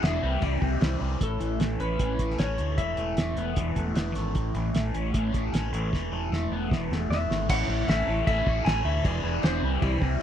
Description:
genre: indie rock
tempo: 153 BPM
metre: 4/4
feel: straight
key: unclear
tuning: A4 = 440 Hz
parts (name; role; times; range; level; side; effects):
- clean electric guitar; melody; 0.0-4.1, 7.1-10.2 s; A4 to G#5; -31 LUFS; left 1 dB; tape echo
- crunchy overdriven guitar; riff; 0.0-10.2 s; A2 to A4; -30 LUFS; equal; phaser
- overdriven fingered electric bass; bass; 0.0-10.1 s; E1 to D2; -29 LUFS; equal; none
- cloth-damped thuddy drum kit; drums; 0.0-10.1 s; crash cymbal, hi-hat, kick drum, snare drum; -28 LUFS; equal; none
room: little or no reverb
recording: dry, close 1970s-style studio recording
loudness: -24 LUFS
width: side -10 dB against mid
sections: 0.0-1.2 A section; 1.2-7.5 B section; 7.5-10.2 A section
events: drum fill 5.9-7.5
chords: 0.2 C; 1.2 A; 2.8 Esus4; 4.4 A; 5.9 Esus4; 7.5 A; 9.1 E7; 9.6 C

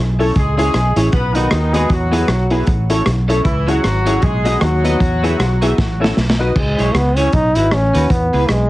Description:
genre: ska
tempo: 155 BPM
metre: 4/4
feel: swing 58% on 8ths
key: E major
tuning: A4 = 439 Hz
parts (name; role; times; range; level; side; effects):
- fingered electric bass; bass; 0.0-8.7 s; G#1 to E2; -17 LUFS; equal; none
- clean electric guitar; accompaniment; 0.2-8.4 s; D#4 to E5; -23 LUFS; right 2 dB; analog chorus, plate reverb
- honky-tonk upright piano; stabs; 0.2-6.5 s; B3 to B4; -22 LUFS; left 2 dB; plate reverb
- crunchy breakbeat drum kit; drums; 0.2-8.6 s; crash cymbal, hi-hat, kick drum, rim click, snare drum; -19 LUFS; equal; none
- mellow horn section; melody; 0.4-6.2 s; D#3 to B4; -21 LUFS; equal; plate reverb, analog delay
- clear trombone; melody; 6.6-8.7 s; G#3 to E4; -16 LUFS; equal; plate reverb
room: light reverb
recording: heavily compressed radio sound, cassette tape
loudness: -13 LUFS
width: side -17 dB against mid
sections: 0.0-6.6 A section; 6.6-8.7 B section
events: drum fill 5.8-6.6; trombone solo 6.6-8.7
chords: 0.4 C#m; 1.1 B; 1.9 E; 2.7 A; 3.5 C#m; 4.2 B; 5.0 E; 5.8 A; 6.2 B; 6.6 C#m; 7.3 B; 8.1 E

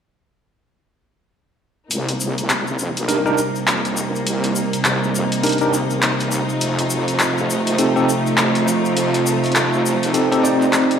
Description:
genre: glitch hop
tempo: 102 BPM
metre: 4/4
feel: swing 60% on 16ths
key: C dorian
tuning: A4 = 441 Hz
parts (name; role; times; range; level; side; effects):
- warm studio string section; sustained chords; 1.9-11.0 s; C3 to Eb4; -20 LUFS; right 1 dB; none
- wobble bass; bass; 1.9-11.0 s; A1 to G2; -26 LUFS; left 1 dB; chorus, high-pass filter
- drum and bass drum kit; drums; 1.9-11.0 s; handclaps, hi-hat; -21 LUFS; left 1 dB; overdrive, small room reverb
- cabasa; percussion; 1.9-11.0 s; none; -30 LUFS; left 4 dB; none
- bell-like tine electric piano; stabs; 3.1-11.0 s; C4 to D5; -20 LUFS; equal; medium stereo tremolo, dub echo
room: moderate lush hall reverb, RT60 1.8 s, studio ambience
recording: played on a big sound system in a bare room, large studio reverb, high-pass filter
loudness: -16 LUFS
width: side -7 dB against mid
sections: 1.9-11.0 A section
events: build-up 1.9-11.0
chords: 1.9 Cm7; 6.6 F7

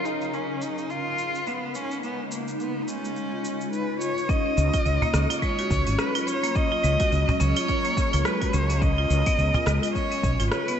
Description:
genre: organic downtempo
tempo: 106 BPM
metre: 4/4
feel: swing 58% on 16ths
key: unclear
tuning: A4 = 439 Hz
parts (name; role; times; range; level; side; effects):
- rich cello; melody; 0.0-10.8 s; Bb3 to Eb5; -27 LUFS; equal; analog delay
- granular cloud pad; sustained chords; 0.0-10.8 s; Db3 to Bb4; -32 LUFS; left 1 dB; built-in reverb, ensemble chorus, sidechain pumping
- deep house drum kit; drums; 0.1-10.8 s; cabasa, hi-hat, rim click; -34 LUFS; equal; overdrive
- marimba with hard mallets; arpeggios; 4.3-10.8 s; Ab3 to Db5; -28 LUFS; equal; analog delay
- electronic kick drum; drums; 4.3-10.4 s; none; -26 LUFS; equal; overdrive
- fretless electric bass; bass; 4.6-10.5 s; Ab1 to Db2; -23 LUFS; equal; lush chorus
- cajon; percussion; 5.0-9.9 s; none; -29 LUFS; equal; none
room: moderate lush hall reverb, RT60 2.6 s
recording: dreamy mix soaked in reverb, low-pass filter, nothing above 8.0 kHz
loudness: -22 LUFS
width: side -8 dB against mid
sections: 0.0-4.3 A section; 4.3-10.8 B section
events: filter sweep 0.0-4.3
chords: 0.0 Dbadd9; 4.3 Gb6; 8.8 Db9

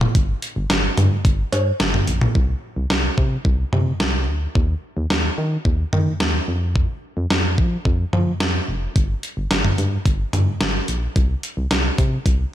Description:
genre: synth-pop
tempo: 109 BPM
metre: 4/4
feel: straight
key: G minor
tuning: A4 = 440 Hz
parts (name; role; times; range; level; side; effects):
- solid FM bass; bass; 0.0-12.5 s; F1 to F3; -22 LUFS; equal; none
- clean 12-bit digital drum machine; drums; 0.0-12.4 s; cowbell, hi-hat, kick drum, snare drum, toms; -19 LUFS; equal; none
room: little or no reverb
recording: none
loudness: -18 LUFS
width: side -12 dB against mid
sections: 0.0-2.4 A section; 2.4-12.5 B section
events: none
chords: none

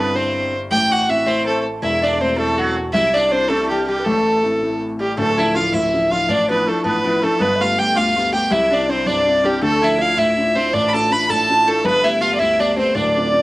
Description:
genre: celtic folk, Celtic jig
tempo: 108 BPM (dotted quarters)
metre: 6/8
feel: straight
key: A dorian, D dorian from 5.2 s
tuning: A4 = 441 Hz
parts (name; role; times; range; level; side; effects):
- warm fiddle; melody; 0.0-13.4 s; F#4 to B5; -18 LUFS; right 1 dB; cassette tape
- sitar; second line; 0.0-13.4 s; F#3 to B4; -24 LUFS; right 2 dB; cassette tape, plate reverb
- warm upright piano; accompaniment; 0.0-13.4 s; D1 to G4; -21 LUFS; left 1 dB; cassette tape
- baroque flute; second line; 0.7-13.4 s; F#4 to B5; -24 LUFS; left 2 dB; cassette tape, plate reverb
room: moderate small room reverb, RT60 0.5 s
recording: home recording on cassette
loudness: -15 LUFS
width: side -19 dB against mid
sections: 0.0-5.2 A section; 5.2-13.4 B section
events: none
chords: 0.0 Cadd9; 0.7 Am; 2.9 Cadd9; 4.1 Am; 5.2 Dmadd9; 7.4 Gadd9; 8.5 Cadd9; 9.6 Dmadd9; 11.8 Gadd9

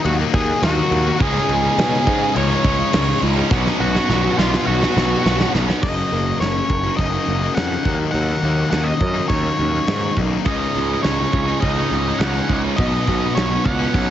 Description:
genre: quiet-loud alternative rock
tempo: 104 BPM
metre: 4/4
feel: straight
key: F# major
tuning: A4 = 437 Hz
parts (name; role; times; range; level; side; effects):
- octave-fuzz lead guitar; melody; 0.0-14.1 s; E#4 to C#6; -22 LUFS; equal; distortion, slapback echo
- cranked stack guitar; riff; 0.0-14.1 s; F#2 to D#4; -24 LUFS; left 9 dB; overdrive
- fuzz picked electric bass; bass; 0.0-14.1 s; F#1 to B2; -21 LUFS; right 1 dB; overdrive
- big rock drum kit; drums; 0.1-14.1 s; crash cymbal, hi-hat, kick drum, snare drum; -23 LUFS; right 1 dB; none
- distorted electric guitar; riff; 1.2-5.8, 10.5-14.1 s; B2 to D#4; -25 LUFS; right 13 dB; overdrive
- mellow electric guitar; arpeggios; 5.8-14.1 s; B2 to A#4; -26 LUFS; right 2 dB; analog chorus
room: light reverb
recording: heavily compressed radio sound, multiband compression, nothing above 7.6 kHz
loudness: -16 LUFS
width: side -11 dB against mid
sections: 0.0-5.8 A section; 5.8-14.1 B section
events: drum fill 3.5-5.8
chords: 0.0 D#m; 1.2 C#sus2; 3.5 Bsus2; 5.8 F#6; 7.9 D#m7; 10.5 C#sus2; 12.8 Bsus2

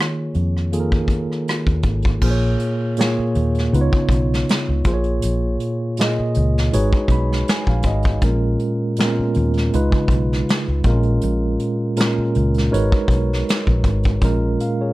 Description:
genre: R&B, neo-soul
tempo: 80 BPM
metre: 4/4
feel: swing 54% on 16ths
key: unclear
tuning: A4 = 440 Hz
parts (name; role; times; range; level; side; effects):
- mellow tine electric piano; accompaniment; 0.0-14.9 s; A#2 to B5; -20 LUFS; right 1 dB; medium stereo tremolo
- vintage muted fingered electric bass; bass; 0.0-14.6 s; G#1 to D#3; -20 LUFS; equal; none
- soft brush drum kit; drums; 0.0-14.8 s; crash cymbal, hi-hat, kick drum, rim click, snare drum; -20 LUFS; equal; none
room: light reverb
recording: dark, warm production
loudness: -16 LUFS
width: side -18 dB against mid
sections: 0.0-2.2 A section; 2.2-14.9 B section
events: tine electric piano fill 6.7-8.2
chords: 0.0 D#9sus4; 2.2 A#m7; 3.7 C#9; 4.8 A#m7; 6.7 G#m11; 8.2 A#m7; 9.7 C#9; 10.8 A#m7; 12.7 G#m11; 14.2 A#m7

